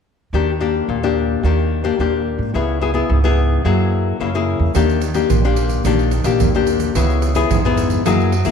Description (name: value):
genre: samba and choro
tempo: 109 BPM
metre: 4/4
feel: straight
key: unclear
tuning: A4 = 440 Hz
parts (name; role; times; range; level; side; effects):
- nylon-string guitar; accompaniment; 0.3-8.5 s; Ab2 to Ab4; -17 LUFS; left 7 dB; none
- upright bass; bass; 0.3-8.5 s; Bb1 to Ab2; -19 LUFS; right 2 dB; none
- tube shaker, surdo and pandeiro; percussion; 4.7-8.5 s; none; -21 LUFS; right 7 dB; none
room: moderate echo chamber reverb, RT60 1.8 s, small room ambience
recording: 1960s-style stereo with parts hard left and right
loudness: -15 LUFS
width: side -7 dB against mid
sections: 0.3-4.8 A section; 4.8-8.5 B section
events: none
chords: 0.3 Ebmaj7; 2.5 Dbm7; 3.6 Gb9; 4.8 Ebmaj7; 7.0 Dbm7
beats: | 0.34 0.89 1.44 1.99 | 2.54 3.10 3.65 4.20 | 4.75 5.30 5.85 6.40 | 6.96 7.51 8.06